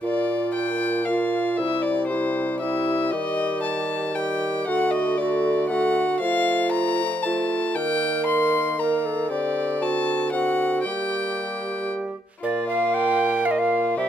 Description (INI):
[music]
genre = classical, renaissance-style consort dance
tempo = 116 BPM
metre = 3/4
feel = straight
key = unclear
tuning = A4 = 439 Hz
[part]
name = warm violin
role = melody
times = 0.0-14.1 s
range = F4 to C6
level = -26 LUFS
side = left 5 dB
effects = none
[part]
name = mellow hollow tenor recorder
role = second line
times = 0.0-14.1 s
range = E4 to G5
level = -25 LUFS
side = right 4 dB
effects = none
[part]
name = warm bassoon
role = accompaniment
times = 0.0-14.1 s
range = G3 to C4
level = -30 LUFS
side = left 3 dB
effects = none
[part]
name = mellow bassoon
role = bass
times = 0.0-14.1 s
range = Bb2 to G3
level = -29 LUFS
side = right 1 dB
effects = none
[sound]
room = moderate studio reverb, RT60 0.8 s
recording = minimal, uncompressed stereo recording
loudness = -21 LUFS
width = side -9 dB against mid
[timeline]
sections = 0.0-12.4 A section; 12.4-14.1 A section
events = none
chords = 0.0 Bb; 1.6 C; 3.1 Eb; 4.7 D; 6.2 F; 7.8 Eb; 9.3 D7sus4; 10.9 Gm; 12.4 Bb5